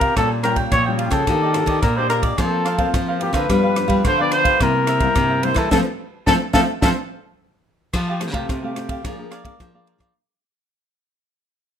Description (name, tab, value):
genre	samba and choro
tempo	108 BPM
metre	4/4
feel	straight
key	F major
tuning	A4 = 440 Hz
part	mellow trumpet	melody	0.0-6.9 s	F4 to D5	-20 LUFS	left 1 dB	none
part	cavaquinho	accompaniment	0.0-10.1 s	D4 to A5	-26 LUFS	right 2 dB	none
part	nylon-string guitar	accompaniment	0.0-10.1 s	G2 to Ab4	-25 LUFS	left 3 dB	none
part	nylon-string guitar	bass	0.0-10.1 s	Bb2 to G3	-23 LUFS	equal	none
part	compact cocktail drum kit	drums	0.0-10.1 s	crash cymbal, kick drum, ride cymbal, rim click, snare drum	-23 LUFS	equal	none
room	light reverb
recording	minimal, uncompressed stereo recording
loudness	-16 LUFS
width	side -8 dB against mid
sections	0.0-7.9 A section; 7.9-10.2 B section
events	band accent 5.7-7.9; fade-out 7.9-10.2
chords	0.2 Bbm6; 1.3 Ebmaj7; 2.4 Bbsus2/F; 3.5 G7; 4.6 C7; 5.7 Fmaj7; 7.9 Fadd9; 9.0 Bb7/F